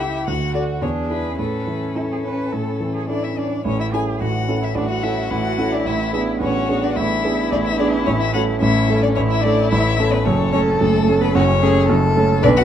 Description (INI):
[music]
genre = quick classical-period movement for piano quartet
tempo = 109 BPM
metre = 4/4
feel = straight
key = A major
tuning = A4 = 438 Hz
[part]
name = rich violin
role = melody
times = 0.0-12.6 s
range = A4 to G#5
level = -24 LUFS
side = left 7 dB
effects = none
[part]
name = rich cello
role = second line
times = 0.0-12.6 s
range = A3 to B4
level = -26 LUFS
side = right 5 dB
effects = none
[part]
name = rich violin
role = second line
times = 0.0-12.6 s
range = C#4 to B4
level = -24 LUFS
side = left 3 dB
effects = none
[part]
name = clear concert grand piano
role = accompaniment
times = 0.0-12.6 s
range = F#1 to A4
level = -19 LUFS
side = right 1 dB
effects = none
[sound]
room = moderate large studio reverb, RT60 1.4 s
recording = dark, warm production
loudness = -16 LUFS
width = side -9 dB against mid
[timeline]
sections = 0.0-3.7 A section; 3.7-12.6 B section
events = none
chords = 0.3 D; 0.8 E7; 1.4 A; 5.9 E7/A; 8.1 A; 10.3 F#m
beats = 0.27 0.82 | 1.38 1.96 2.53 3.09 | 3.66 4.21 4.76 5.31 | 5.87 6.42 6.97 7.52 | 8.07 8.62 9.16 9.71 | 10.26 10.80 11.35 11.89 | 12.43